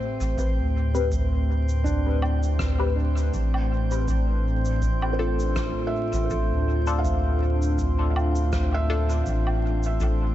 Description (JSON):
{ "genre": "ambient dub", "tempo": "81 BPM", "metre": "4/4", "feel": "swing 54% on 16ths", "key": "unclear", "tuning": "A4 = 440 Hz", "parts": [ { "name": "warbly tape-like pad", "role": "sustained chords", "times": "0.0-10.3 s", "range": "A2 to C5", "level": "-30 LUFS", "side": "equal", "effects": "chorus, built-in reverb, vintage 12-bit sampler grit" }, { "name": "felt-muted upright piano", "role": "arpeggios", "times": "0.0-10.3 s", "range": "D4 to F5", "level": "-33 LUFS", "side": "right 2 dB", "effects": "dub echo" }, { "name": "drifting glass-harmonics texture", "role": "texture", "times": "0.0-10.3 s", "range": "C4 to C5", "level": "-35 LUFS", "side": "equal", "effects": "chorus, built-in reverb" }, { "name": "soft dub sub bass", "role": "bass", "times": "0.2-10.3 s", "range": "A1 to D2", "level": "-24 LUFS", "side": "equal", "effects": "tube saturation" }, { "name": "cabasa, woodblock and rim click", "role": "drums", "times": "0.2-10.2 s", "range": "none", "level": "-37 LUFS", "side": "right 1 dB", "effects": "dub echo" }, { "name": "electronic kick drum", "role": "drums", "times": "0.4-10.2 s", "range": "none", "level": "-31 LUFS", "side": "equal", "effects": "overdrive" }, { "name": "filtered dub chord stab", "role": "stabs", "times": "0.9-9.1 s", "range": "C4 to B4", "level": "-34 LUFS", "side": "left 5 dB", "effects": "phaser, dub echo" } ], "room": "light reverb", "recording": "vinyl crackle, nothing above 7.9 kHz", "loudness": "-22 LUFS", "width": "side -13 dB against mid", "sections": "0.0-10.3 A section", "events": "none", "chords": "0.0 Am7; 3.3 Dm/A", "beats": "| 0.38 1.12 1.86 2.60 | 3.34 4.08 4.83 5.57 | 6.31 7.05 7.79 8.53 | 9.27 10.01" }